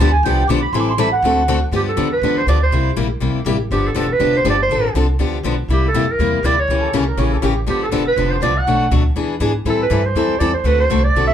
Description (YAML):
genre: acoustic string swing (jazz manouche)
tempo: 242 BPM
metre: 4/4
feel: swing 57% on 8ths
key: G mixolydian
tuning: A4 = 440 Hz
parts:
  - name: mellow accordion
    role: second line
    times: 0.0-1.6, 6.8-7.6 s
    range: G4 to D6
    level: -20 LUFS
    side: right 3 dB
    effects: none
  - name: picked steel-string acoustic guitar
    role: accompaniment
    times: 0.0-11.3 s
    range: B2 to A4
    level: -19 LUFS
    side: left 3 dB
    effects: none
  - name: upright bass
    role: bass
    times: 0.0-11.3 s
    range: E1 to A2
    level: -19 LUFS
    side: equal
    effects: none
  - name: clear clarinet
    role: melody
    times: 1.8-11.3 s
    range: G4 to F#5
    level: -18 LUFS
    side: right 3 dB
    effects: none
room: wet small room reverb, RT60 0.6 s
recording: heard from further back in the room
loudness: -14 LUFS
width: side -9 dB against mid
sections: 0.0-1.7 A section; 1.7-11.3 B section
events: accordion solo 0.0-1.7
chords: 0.0 G7; 0.7 Am7; 1.2 D7; 1.7 G7; 2.7 C7; 3.7 G7; 4.7 Dm7; 5.2 G7; 5.7 C7; 6.7 C#dim7; 7.7 G7; 8.7 Bm7; 9.2 E7; 9.7 Am7; 10.7 D7